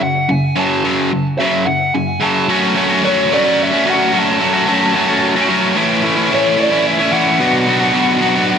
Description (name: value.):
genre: rock.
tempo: 110 BPM.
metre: 3/4.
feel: straight.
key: unclear.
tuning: A4 = 444 Hz.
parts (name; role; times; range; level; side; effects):
smooth overdriven lead guitar; melody; 0.0-8.6 s; C#5 to A5; -18 LUFS; equal; digital delay.
crunchy overdriven guitar; riff; 0.0-8.6 s; F#2 to F#4; -13 LUFS; equal; none.
room: light reverb, digital ambience.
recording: none.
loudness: -12 LUFS.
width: side -7 dB against mid.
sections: 0.0-2.5 A section; 2.5-8.6 B section.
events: build-up 0.0-2.5.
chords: 0.0 F#5; 2.5 F#m; 5.8 A; 7.4 Bm.